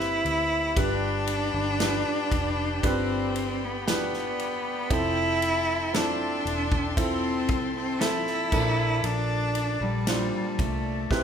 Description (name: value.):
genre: pop ballad.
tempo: 58 BPM.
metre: 4/4.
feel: straight.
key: unclear.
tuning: A4 = 440 Hz.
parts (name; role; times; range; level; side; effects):
bright cello; melody; 0.0-11.2 s; G3 to E4; -27 LUFS; left 1 dB; none.
warm baby grand piano; accompaniment; 0.0-11.2 s; G2 to C5; -31 LUFS; right 2 dB; none.
dark studio string section; sustained chords; 0.0-11.2 s; C4 to C6; -35 LUFS; left 2 dB; none.
vintage muted fingered electric bass; bass; 0.0-11.2 s; E1 to D2; -32 LUFS; equal; none.
natural country drum kit; drums; 0.0-11.2 s; crash cymbal, kick drum, ride cymbal, snare drum; -30 LUFS; equal; none.
room: moderate large studio reverb, RT60 0.8 s.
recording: band playing live in one room.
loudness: -24 LUFS.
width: side -8 dB against mid.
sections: 0.0-11.2 A section.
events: none.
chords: 0.0 Cmaj7; 0.8 G7; 4.9 Fmaj7; 8.5 Bbmaj7.